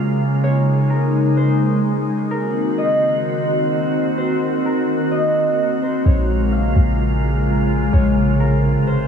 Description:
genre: hip hop, atmospheric cloud-rap.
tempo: 128 BPM.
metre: 4/4.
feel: half-time.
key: Bb minor.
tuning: A4 = 438 Hz.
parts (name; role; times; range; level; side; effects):
concert harp; melody; 0.0-9.1 s; Bb4 to F5; -23 LUFS; right 1 dB; low-pass filter, tape echo.
glassy FM pad; sustained chords; 0.0-9.1 s; C3 to Gb4; -17 LUFS; equal; ensemble chorus, built-in reverb.
clean 808-style bass; bass; 6.1-9.1 s; Ab1 to Bb1; -18 LUFS; equal; none.
room: moderate huge ambient reverb, RT60 5.5 s.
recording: none.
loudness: -15 LUFS.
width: side -7 dB against mid.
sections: 0.0-6.1 A section; 6.1-9.1 B section.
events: none.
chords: 0.0 Bbm7; 2.3 Cm7b5; 6.1 Bbm7.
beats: | 0.43 0.90 1.37 1.84 | 2.31 2.77 3.24 3.71 | 4.18 4.65 5.12 5.59 | 6.06 6.53 6.99 7.46 | 7.93 8.40 8.87.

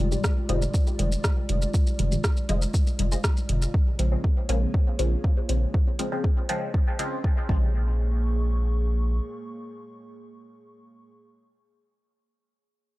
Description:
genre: dub techno.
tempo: 120 BPM.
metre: 4/4.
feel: straight.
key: Bb minor.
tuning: A4 = 440 Hz.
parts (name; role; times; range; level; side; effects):
dark analog pad; sustained chords; 0.0-11.1 s; Ab3 to Db6; -36 LUFS; right 1 dB; chorus, sidechain pumping.
filtered dub chord stab; stabs; 0.0-11.1 s; Ab2 to C4; -31 LUFS; equal; phaser, sidechain pumping, dub echo.
soft dub sub bass; bass; 0.0-9.2 s; F1 to Bb1; -24 LUFS; equal; tube saturation, sidechain pumping.
deep house drum kit; drums; 0.1-7.1 s; hi-hat, rim click, shaker; -32 LUFS; equal; dub echo.
electronic kick drum; drums; 0.2-7.6 s; none; -23 LUFS; equal; none.
filtered dub chord stab; riff; 0.5-11.1 s; F4 to Ab5; -38 LUFS; left 3 dB; phaser, ensemble chorus, sidechain pumping, dub echo.
room: little or no reverb.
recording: dry, gritty hardware recording, cassette tape.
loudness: -22 LUFS.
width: side -18 dB against mid.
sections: 0.0-3.7 A section; 3.7-7.7 B section; 7.7-11.7 C section.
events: filter sweep on synth stab 0.0-3.7, 3.7-7.7.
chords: 0.0 Fm7; 3.7 Bbm7.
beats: 0.24 0.74 1.24 | 1.74 2.24 2.74 3.24 | 3.74 4.24 4.74 5.24 | 5.74 6.24 6.74 7.24 | 7.74 8.24 8.74 9.24 | 9.74 10.24 10.74.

